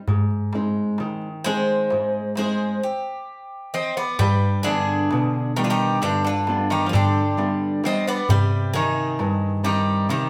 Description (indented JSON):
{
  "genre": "greek folk, Greek bouzouki band",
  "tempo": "132 BPM (eighths)",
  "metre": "9/8",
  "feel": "straight",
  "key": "unclear",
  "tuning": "A4 = 443 Hz",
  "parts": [
    { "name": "nylon-string guitar", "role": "accompaniment", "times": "0.1-10.3 s", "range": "G2 to Eb4", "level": "-26 LUFS", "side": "equal", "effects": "none" },
    { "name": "darbuka", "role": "percussion", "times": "0.1-10.3 s", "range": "none", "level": "-26 LUFS", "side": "equal", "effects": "none" },
    { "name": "Greek bouzouki", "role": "melody", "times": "1.4-10.3 s", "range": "F4 to Eb5", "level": "-29 LUFS", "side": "equal", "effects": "none" },
    { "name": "Greek bouzouki", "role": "second line", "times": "1.5-10.3 s", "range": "D3 to C4", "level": "-27 LUFS", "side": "equal", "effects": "none" }
  ],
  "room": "wet studio reverb, RT60 0.8 s",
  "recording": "band playing live in one room",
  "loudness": "-22 LUFS",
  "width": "mono",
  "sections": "0.0-4.2 A section; 4.2-10.3 B section",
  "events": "stop 2.8-4.2",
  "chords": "0.1 Ab; 4.2 G; 8.3 Cm",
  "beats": "| 0.07 0.53 0.99 1.45 1.91 2.37 2.83 3.28 3.74 | 4.20 4.66 5.11 5.57 6.02 6.47 6.93 7.38 7.84 | 8.29 8.74 9.19 9.64 10.09"
}